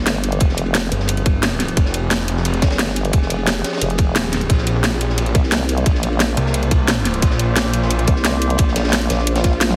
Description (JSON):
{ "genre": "dark technical drum and bass", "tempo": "176 BPM", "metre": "4/4", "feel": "straight", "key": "F dorian", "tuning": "A4 = 437 Hz", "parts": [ { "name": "metallic inharmonic drone", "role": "sustained chords", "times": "0.0-9.8 s", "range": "F3 to D5", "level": "-28 LUFS", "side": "equal", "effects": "chorus, built-in reverb, sidechain pumping" }, { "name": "vowel-sweep wobble bass", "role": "bass", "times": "0.0-9.8 s", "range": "F1 to C2", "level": "-22 LUFS", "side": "equal", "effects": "chorus" }, { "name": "crunchy breakbeat drum kit", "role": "drums", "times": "0.1-9.8 s", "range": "ride cymbal, snare drum", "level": "-30 LUFS", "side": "equal", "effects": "high-pass filter on cymbals, high-pass filter on snare, high-pass filter on room" }, { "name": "drum and bass drum kit", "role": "drums", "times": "0.1-9.8 s", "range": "hi-hat, snare drum, toms", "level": "-23 LUFS", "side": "equal", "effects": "overdrive" }, { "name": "electronic kick drum", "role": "drums", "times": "0.4-9.5 s", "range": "none", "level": "-18 LUFS", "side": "equal", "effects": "overdrive" }, { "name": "snarling distorted saw bass", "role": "bass", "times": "0.9-8.1 s", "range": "Eb1 to C2", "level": "-22 LUFS", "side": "equal", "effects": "distortion, tube saturation, sidechain pumping" }, { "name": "swell", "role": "sound effects", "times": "9.4-9.8 s", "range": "none", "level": "-28 LUFS", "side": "equal", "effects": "none" } ], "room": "light reverb", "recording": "heavily compressed radio sound, faint mains hum", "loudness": "-18 LUFS", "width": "mono", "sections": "0.0-9.8 A section", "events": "swell 9.4-9.8", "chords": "0.0 Fm; 4.5 Bb" }